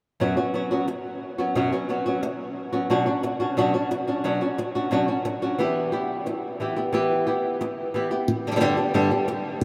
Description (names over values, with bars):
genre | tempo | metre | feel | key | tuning
flamenco | 179 BPM | 4/4 | straight | unclear | A4 = 440 Hz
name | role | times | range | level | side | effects
flamenco guitar | melody | 0.2-9.6 s | F#2 to G4 | -25 LUFS | equal | none
room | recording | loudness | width
wet huge ambient reverb, RT60 7.7 s | in a vast, echoing space | -25 LUFS | mono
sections
0.2-9.6 A section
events
none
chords
0.2 F#sus4; 2.9 Bmadd9; 5.6 Em; 8.3 G